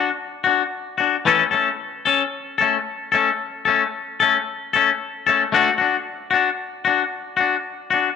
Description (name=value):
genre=highlife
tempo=112 BPM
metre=4/4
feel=swing 54% on 16ths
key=A major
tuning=A4 = 440 Hz
part: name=twangy electric guitar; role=solo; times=0.0-8.1 s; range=E3 to A4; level=-18 LUFS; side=left 6 dB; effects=spring reverb
room=moderate plate reverb, RT60 2.5 s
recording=none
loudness=-18 LUFS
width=side -6 dB against mid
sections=0.0-1.3 A section; 1.3-8.2 B section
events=none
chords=0.0 D; 1.3 A; 5.5 D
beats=0.18 0.72 | 1.25 1.78 2.32 2.85 | 3.38 3.92 4.45 4.99 | 5.52 6.05 6.59 7.12 | 7.65